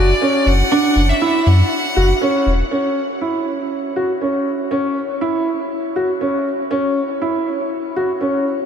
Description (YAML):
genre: piano and strings electronica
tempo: 120 BPM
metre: 4/4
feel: straight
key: unclear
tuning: A4 = 440 Hz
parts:
  - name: bright violin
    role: melody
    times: 0.0-2.5 s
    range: D5 to F#5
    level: -23 LUFS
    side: left 1 dB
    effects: shimmer reverb, diffuse ambient delay
  - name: clear upright piano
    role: riff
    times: 0.0-8.5 s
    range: C#4 to F#4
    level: -17 LUFS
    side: right 1 dB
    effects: shimmer reverb, diffuse ambient delay
  - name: warm sub bass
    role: bass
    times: 0.0-2.6 s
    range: E1 to F#2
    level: -14 LUFS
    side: equal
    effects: none
room: wet huge ambient reverb, RT60 8.0 s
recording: dreamy mix soaked in reverb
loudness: -15 LUFS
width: side -8 dB against mid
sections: 0.0-2.7 A section; 2.7-8.7 B section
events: none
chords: 0.0 Dadd9/F# (rootless); 2.7 N.C.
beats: 0.21 | 0.71 1.21 1.71 2.21 | 2.71 3.21 3.71 4.21 | 4.71 5.21 5.71 6.21 | 6.71 7.21 7.71 8.21